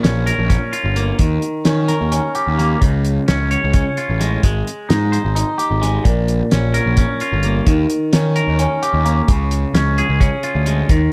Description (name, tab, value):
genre	psychedelic rock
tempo	260 BPM (eighths)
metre	7/8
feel	straight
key	unclear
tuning	A4 = 440 Hz
part	twangy electric guitar	riff	0.0-11.1 s	Bb2 to Db5	-22 LUFS	equal	phaser
part	fuzz picked electric bass	bass	0.0-11.1 s	G1 to Eb3	-20 LUFS	equal	overdrive
part	cloth-damped thuddy drum kit	drums	0.0-11.0 s	hi-hat, kick drum, snare drum	-20 LUFS	equal	none
room	light reverb, studio reverb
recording	none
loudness	-17 LUFS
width	mono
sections	0.0-11.1 A section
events	none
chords	0.0 Bbm; 1.2 Eb7; 2.8 Db; 4.4 Abmaj7; 6.1 Bbm; 7.7 Eb7; 9.3 Db